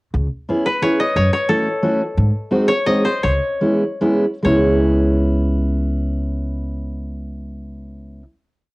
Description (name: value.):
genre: musette waltz.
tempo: 134-178 BPM.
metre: 3/4.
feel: straight.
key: C# minor.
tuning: A4 = 439 Hz.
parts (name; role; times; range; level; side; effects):
upright bass; bass; 0.1-8.2 s; C#2 to G#2; -20 LUFS; equal; none.
fingerpicked steel-string acoustic guitar; accompaniment; 0.5-8.2 s; G#3 to G#4; -18 LUFS; equal; cassette tape.
koto; melody; 0.7-8.2 s; A4 to D#5; -21 LUFS; left 1 dB; cassette tape.
room: light reverb.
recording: home recording on cassette.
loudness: -16 LUFS.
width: side -22 dB against mid.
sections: 0.1-4.5 A section; 4.5-7.1 final chord.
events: slowing down 2.2-4.5.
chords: 0.1 C#m7; 1.2 F#m7; 2.2 G#7; 3.2 C#m7.